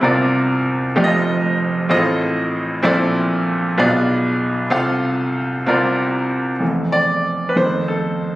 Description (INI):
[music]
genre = gospel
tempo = 64 BPM (dotted quarters)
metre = 6/8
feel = straight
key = F major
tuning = A4 = 439 Hz
[part]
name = bright baby grand piano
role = solo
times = 0.0-8.4 s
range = F1 to F5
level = -16 LUFS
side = equal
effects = none
[sound]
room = light reverb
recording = recorded on a phone in the room, studio reverb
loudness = -16 LUFS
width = side -16 dB against mid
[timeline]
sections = 0.0-6.6 A section; 6.6-8.4 B section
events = grand piano solo 6.6-8.4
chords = 0.0 C9sus4; 1.0 F9; 1.9 F7/A; 2.8 Bbmaj9#11; 3.8 Bdim7; 4.7 F/C; 5.7 C9sus4; 6.6 Fmaj7; 7.6 F7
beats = 0.02 | 0.96 1.90 | 2.84 3.78 | 4.73 5.67 | 6.61 7.56